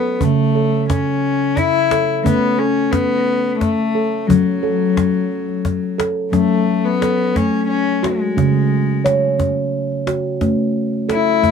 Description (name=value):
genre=world meditative, meditative tuned percussion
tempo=88 BPM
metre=3/4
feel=straight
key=F# minor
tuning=A4 = 440 Hz
part: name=warm cello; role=melody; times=0.0-11.5 s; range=F#3 to E4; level=-18 LUFS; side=left 7 dB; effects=none
part: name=steel tongue drum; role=arpeggios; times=0.0-11.5 s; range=C#3 to C#5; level=-17 LUFS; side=right 2 dB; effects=none
part: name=cajon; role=percussion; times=0.2-11.5 s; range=none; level=-21 LUFS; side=left 2 dB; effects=none
room=wet booth ambience, RT60 0.2 s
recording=none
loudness=-15 LUFS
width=side -6 dB against mid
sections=0.0-6.3 A section; 6.3-11.5 B section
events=none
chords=0.2 A/C#; 2.2 A; 4.3 F#m; 8.4 C#5; 10.4 A